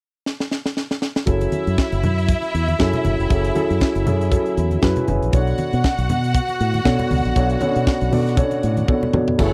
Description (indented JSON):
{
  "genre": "disco",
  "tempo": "118 BPM",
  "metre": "4/4",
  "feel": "swing 56% on 16ths",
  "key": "F# minor",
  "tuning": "A4 = 440 Hz",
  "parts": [
    { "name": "tight funk drum kit", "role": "drums", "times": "0.3-9.5 s", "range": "crash cymbal, hi-hat, kick drum, snare drum, toms", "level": "-23 LUFS", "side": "equal", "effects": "none" },
    { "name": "rich studio string section", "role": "second line", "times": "1.3-9.1 s", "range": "E4 to F#5", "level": "-28 LUFS", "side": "equal", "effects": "none" },
    { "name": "dark concert grand piano", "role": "accompaniment", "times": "1.3-9.5 s", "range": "B2 to D5", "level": "-24 LUFS", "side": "equal", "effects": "none" },
    { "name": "fingered electric bass with an envelope filter", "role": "bass", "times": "1.3-9.5 s", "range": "E#1 to B2", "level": "-23 LUFS", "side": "equal", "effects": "none" },
    { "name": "congas", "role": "percussion", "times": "1.4-9.5 s", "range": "none", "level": "-29 LUFS", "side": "equal", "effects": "none" },
    { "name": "bright tonewheel organ", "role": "sustained chords", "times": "9.4-9.5 s", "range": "E3 to F#4", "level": "-27 LUFS", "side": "equal", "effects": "overdrive, chorus vibrato, slow rotary speaker" }
  ],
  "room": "studio reverb",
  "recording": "dry, close 1970s-style studio recording",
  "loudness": "-19 LUFS",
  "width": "mono",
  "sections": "0.0-1.3 A section; 1.3-9.4 B section",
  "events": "drum fill 0.3-1.3, 8.9-9.4",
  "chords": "0.0 N.C.; 1.3 F#m7; 5.3 Bm7"
}